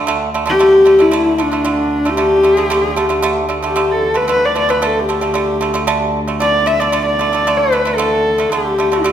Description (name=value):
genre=mongolian traditional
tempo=114 BPM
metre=4/4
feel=straight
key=D zhi mode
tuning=A4 = 440 Hz
part: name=pipa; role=arpeggios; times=0.0-9.1 s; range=D3 to A3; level=-18 LUFS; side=right 5 dB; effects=none
part: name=warm cello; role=drone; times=0.0-9.1 s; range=D2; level=-25 LUFS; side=left 1 dB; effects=none
part: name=warm horsehead fiddle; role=melody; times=0.5-9.1 s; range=D4 to E5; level=-13 LUFS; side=left 1 dB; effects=none
room=wet recital hall reverb, RT60 1.3 s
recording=none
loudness=-12 LUFS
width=side -10 dB against mid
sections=0.0-9.1 A section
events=none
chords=0.0 D5